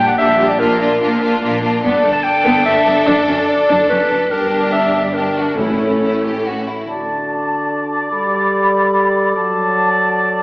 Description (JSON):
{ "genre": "cinematic", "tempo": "145 BPM", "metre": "3/4", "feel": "straight", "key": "D major", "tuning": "A4 = 440 Hz", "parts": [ { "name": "bright symphonic violin section", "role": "melody", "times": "0.0-6.9 s", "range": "E4 to A4", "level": "-23 LUFS", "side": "equal", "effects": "none" }, { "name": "mellow clarinet", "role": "second line", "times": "0.0-10.4 s", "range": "F#4 to A5", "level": "-17 LUFS", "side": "equal", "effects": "none" }, { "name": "warm symphonic violin section", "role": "second line", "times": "0.0-6.7 s", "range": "C#4 to D4", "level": "-20 LUFS", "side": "equal", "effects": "none" }, { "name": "rich studio viola section", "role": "accompaniment", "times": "0.0-6.7 s", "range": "G3 to D4", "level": "-20 LUFS", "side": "equal", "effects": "none" }, { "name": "rich symphonic cello section", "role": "bass", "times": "0.0-6.7 s", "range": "F#2 to Bb2", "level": "-24 LUFS", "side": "equal", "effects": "none" }, { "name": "rich symphonic double bass section", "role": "bass", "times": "0.0-6.7 s", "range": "F#1 to Bb1", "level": "-29 LUFS", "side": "equal", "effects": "none" }, { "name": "timpani", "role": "percussion", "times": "5.6-6.2 s", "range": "A2", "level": "-26 LUFS", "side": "equal", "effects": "none" }, { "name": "mellow hollow large flute ensemble", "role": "second line", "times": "6.9-10.4 s", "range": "A5 to B5", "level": "-20 LUFS", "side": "equal", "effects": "none" }, { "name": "warm oboe", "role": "second line", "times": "6.9-10.4 s", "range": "D5", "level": "-17 LUFS", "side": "equal", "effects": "none" }, { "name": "mellow French horn section", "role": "sustained chords", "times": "6.9-10.4 s", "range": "D3 to G3", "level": "-20 LUFS", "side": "equal", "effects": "none" } ], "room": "wet scoring stage reverb, RT60 1.6 s", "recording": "heard from further back in the room, AM radio sound", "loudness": "-13 LUFS", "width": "side -26 dB against mid", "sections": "0.0-6.9 A section; 6.9-10.4 B section", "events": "none", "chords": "0.0 Gm/Bb; 0.6 Bb; 1.8 Gadd9; 3.1 D/F#; 4.3 Gm; 5.6 A; 6.9 D; 8.1 Gadd9; 9.4 D/F#" }